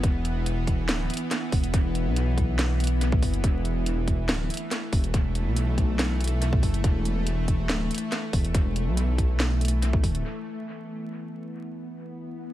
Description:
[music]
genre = deep dubstep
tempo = 141 BPM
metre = 4/4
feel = half-time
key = unclear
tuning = A4 = 440 Hz
[part]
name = bowed-like drone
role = sustained chords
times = 0.0-12.5 s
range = E3 to B3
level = -31 LUFS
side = equal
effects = built-in reverb
[part]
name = dark detuned saw bass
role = bass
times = 0.0-10.2 s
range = D1 to B1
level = -25 LUFS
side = equal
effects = none
[part]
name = electronic kick drum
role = drums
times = 0.0-10.1 s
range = none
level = -24 LUFS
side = equal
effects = none
[part]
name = garage drum kit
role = drums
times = 0.0-10.2 s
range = hi-hat, snare drum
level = -31 LUFS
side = equal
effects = low-pass filter on hats, low-pass filter on snare, low-pass filter on room, dub echo
[sound]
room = little or no reverb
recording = echo-heavy mix, vinyl crackle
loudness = -23 LUFS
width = side -14 dB against mid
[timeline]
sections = 0.0-10.2 A section; 10.2-12.5 B section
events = drop 0.0-10.2; filter sweep on synth drone 10.2-12.5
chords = 0.0 E5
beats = | 0.04 0.46 0.89 1.31 | 1.74 2.16 2.59 3.01 | 3.44 3.87 4.29 4.72 | 5.14 5.57 5.99 6.42 | 6.84 7.27 7.69 8.12 | 8.54 8.97 9.40 9.82 | 10.25 10.67 11.10 11.52 | 11.95 12.38

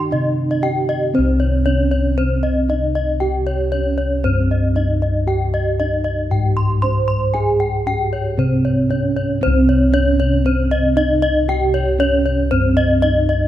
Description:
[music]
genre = Balinese gamelan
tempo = 116 BPM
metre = 4/4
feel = straight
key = C pelog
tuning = A4 = 440 Hz
[part]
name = gamelan-type bronze metallophone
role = melody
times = 0.0-13.5 s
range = C4 to C5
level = -21 LUFS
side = right 4 dB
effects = none
[part]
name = gamelan-type bossed gongs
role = bass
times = 0.0-13.5 s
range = C2 to Ab4-20c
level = -18 LUFS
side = left 1 dB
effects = none
[part]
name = gamelan-type bronze metallophone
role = arpeggios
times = 0.1-13.4 s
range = C5 to C6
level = -21 LUFS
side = left 2 dB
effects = none
[sound]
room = moderate scoring stage reverb, RT60 1.4 s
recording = none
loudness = -15 LUFS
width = side -12 dB against mid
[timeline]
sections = 0.0-1.1 A section; 1.1-13.5 B section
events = none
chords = none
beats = 0.12 0.62 | 1.14 1.65 2.17 2.69 | 3.21 3.72 4.24 4.76 | 5.27 5.79 6.31 6.83 | 7.34 7.86 8.38 8.89 | 9.41 9.93 10.45 10.96 | 11.48 12.00 12.52 13.03

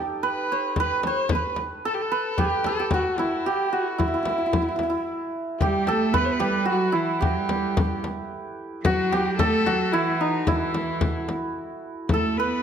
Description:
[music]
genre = Persian modal ensemble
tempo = 111 BPM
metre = 3/4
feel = straight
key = E avaz esfahan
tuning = A4 = 440 Hz
[part]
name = santur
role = melody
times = 0.0-12.6 s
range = C4+50c to C5+50c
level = -25 LUFS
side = right 2 dB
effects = none
[part]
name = rich kamancheh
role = second line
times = 0.2-12.6 s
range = D#4 to C5+48c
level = -29 LUFS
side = left 6 dB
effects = none
[part]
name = frame drum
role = percussion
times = 0.8-12.2 s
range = none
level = -26 LUFS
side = left 3 dB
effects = none
[part]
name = warm cello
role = second line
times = 5.6-12.6 s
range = E3 to B3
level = -28 LUFS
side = right 4 dB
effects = slapback echo
[sound]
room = moderate recital hall reverb, RT60 1.6 s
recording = close, detailed microphones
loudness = -22 LUFS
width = side -8 dB against mid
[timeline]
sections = 0.0-5.6 A section; 5.6-12.6 B section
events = stop 5.1-5.6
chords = none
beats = 0.22 | 0.76 1.30 1.84 | 2.38 2.91 3.45 | 3.99 4.53 5.07 | 5.61 6.15 6.69 | 7.23 7.77 8.31 | 8.85 9.39 9.93 | 10.47 11.01 11.55 | 12.09

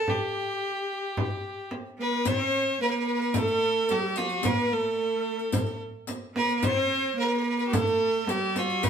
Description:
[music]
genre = Arabic maqam ensemble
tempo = 110 BPM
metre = 4/4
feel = straight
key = unclear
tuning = A4 = 440 Hz
[part]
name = clear fiddle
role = melody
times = 0.0-8.9 s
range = F#4-49c to C5+49c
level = -27 LUFS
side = right 1 dB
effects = none
[part]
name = breathy mellow ney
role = second line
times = 0.0-8.9 s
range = G4-41c to D5-48c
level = -33 LUFS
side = left 2 dB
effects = none
[part]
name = frame drum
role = percussion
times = 0.1-8.9 s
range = none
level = -31 LUFS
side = equal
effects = none
[part]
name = bright cello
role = second line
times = 2.0-8.9 s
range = F#3-38c to C#4-40c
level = -31 LUFS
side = right 4 dB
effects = none
[part]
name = riq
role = percussion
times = 2.3-8.9 s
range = none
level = -35 LUFS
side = left 4 dB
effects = none
[sound]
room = wet stone room reverb, RT60 0.9 s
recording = band playing live in one room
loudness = -24 LUFS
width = side -7 dB against mid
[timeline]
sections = 0.0-2.3 A section; 2.3-8.9 B section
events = none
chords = none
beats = | 0.07 0.62 1.17 1.72 | 2.26 2.81 3.36 3.90 | 4.45 5.00 5.54 6.09 | 6.64 7.18 7.73 8.28 | 8.82

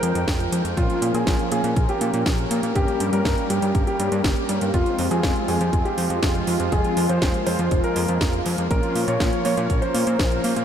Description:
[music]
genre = italo disco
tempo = 121 BPM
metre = 4/4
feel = straight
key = F minor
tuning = A4 = 440 Hz
[part]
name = dark grand piano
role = melody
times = 0.0-10.6 s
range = F4 to Db5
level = -26 LUFS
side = equal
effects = ping-pong delay
[part]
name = warm analog pad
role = sustained chords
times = 0.0-10.6 s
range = F3 to G5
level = -26 LUFS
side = right 1 dB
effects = wide subtle chorus
[part]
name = fat analog bass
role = bass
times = 0.0-10.6 s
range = F1 to Bb2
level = -25 LUFS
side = equal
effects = none
[part]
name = house drum kit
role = drums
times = 0.0-10.6 s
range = hi-hat, snare drum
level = -29 LUFS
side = right 1 dB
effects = none
[part]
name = electronic kick drum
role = drums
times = 0.3-10.3 s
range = none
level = -24 LUFS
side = equal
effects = none
[part]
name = mellow synth brass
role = stabs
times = 0.8-9.6 s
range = F3 to G4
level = -29 LUFS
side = left 3 dB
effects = chorus, tape echo
[sound]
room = moderate huge ambient reverb, RT60 7.7 s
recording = dreamy mix soaked in reverb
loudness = -19 LUFS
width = side -9 dB against mid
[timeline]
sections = 0.0-10.6 A section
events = none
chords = 0.0 Fm; 0.8 Bbm; 2.8 Gdim; 4.7 Fm; 8.7 Bbm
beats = 0.28 | 0.77 1.27 1.76 2.26 | 2.76 3.25 3.75 4.24 | 4.74 5.24 5.73 6.23 | 6.72 7.22 7.71 8.21 | 8.71 9.20 9.70 10.19

